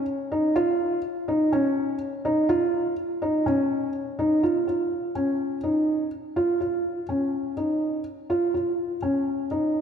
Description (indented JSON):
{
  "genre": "electronica",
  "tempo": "124 BPM",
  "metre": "4/4",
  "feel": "straight",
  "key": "unclear",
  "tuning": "A4 = 436 Hz",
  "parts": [
    { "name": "felt-muted upright piano", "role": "solo", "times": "0.3-9.8 s", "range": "Db4 to F4", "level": "-23 LUFS", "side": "equal", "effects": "tape echo" }
  ],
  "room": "wet concert hall reverb, RT60 1.9 s",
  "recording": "none",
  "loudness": "-23 LUFS",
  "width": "side -7 dB against mid",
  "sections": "0.0-4.4 A section; 4.4-9.8 B section",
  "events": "none",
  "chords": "none"
}